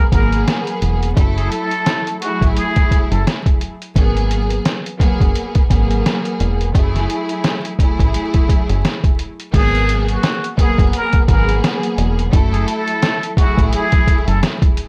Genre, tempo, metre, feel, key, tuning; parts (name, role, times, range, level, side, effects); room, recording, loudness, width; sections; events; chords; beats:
hip hop, boom-bap hip-hop; 86 BPM; 4/4; swing 58% on 16ths; G# phrygian; A4 = 440 Hz
trumpet with plunger mute; melody; 0.0-3.2, 9.5-14.4 s; F#4 to A#4; -24 LUFS; equal; high-pass filter, low-pass filter, delay
warm studio string section; accompaniment; 0.0-14.8 s; F#3 to A4; -24 LUFS; equal; cassette tape, high-pass filter, low-pass filter
deep dub fingered electric bass; bass; 0.1-14.4 s; E1 to A1; -20 LUFS; equal
trip hop sampler-style drum kit; drums; 0.1-14.9 s; crash cymbal, hi-hat, kick drum, snare drum; -18 LUFS; equal
little or no reverb; vinyl crackle; -16 LUFS; mono
0.0-9.5 A section; 9.5-14.9 B section
0.0 G#m9; 1.2 F#m9; 4.0 G#m9; 6.7 F#m9; 9.5 G#m9; 12.3 F#m9
0.47 | 1.17 1.86 2.56 3.26 | 3.96 4.65 5.35 6.05 | 6.75 7.45 8.14 8.84 | 9.54 10.23 10.93 11.63 | 12.33 13.03 13.72 14.42